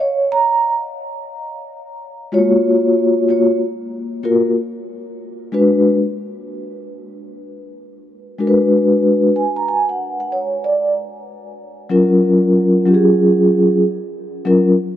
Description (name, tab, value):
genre	hip hop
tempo	94 BPM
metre	4/4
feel	swing 64% on 16ths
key	F# major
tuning	A4 = 440 Hz
part	vibraphone with soft mallets	solo	0.0-14.7 s	F#3 to A#5	-14 LUFS	equal	none
room	light reverb, studio reverb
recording	dark, warm production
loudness	-13 LUFS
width	side -11 dB against mid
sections	0.7-15.0 A section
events	vibraphone fill 9.0-10.9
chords	0.0 N.C.; 0.7 F#maj7; 5.2 G#m7b5; 5.8 Bm6; 10.9 F#maj7